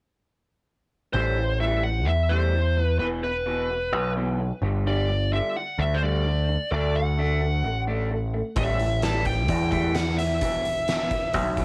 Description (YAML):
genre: quiet-loud alternative rock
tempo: 130 BPM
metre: 4/4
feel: straight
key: A dorian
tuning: A4 = 441 Hz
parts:
  - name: smooth overdriven lead guitar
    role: melody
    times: 1.1-11.6 s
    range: B4 to A5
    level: -30 LUFS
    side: equal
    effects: cassette tape
  - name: electric guitar through a small old amp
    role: arpeggios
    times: 1.1-11.6 s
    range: E2 to D4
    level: -34 LUFS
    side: equal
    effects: subtle chorus
  - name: growling picked electric bass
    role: bass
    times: 1.1-11.6 s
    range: E1 to E2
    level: -27 LUFS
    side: equal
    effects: overdrive
  - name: oversized low-tuned drum kit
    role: drums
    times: 8.6-11.6 s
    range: hi-hat, kick drum, snare drum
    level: -32 LUFS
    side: equal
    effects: none
room: light reverb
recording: home recording on cassette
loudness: -25 LUFS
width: mono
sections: 1.1-11.6 A section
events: none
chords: 1.1 Am7; 3.0 E5; 4.6 G5; 6.7 D; 8.6 A5; 10.4 E5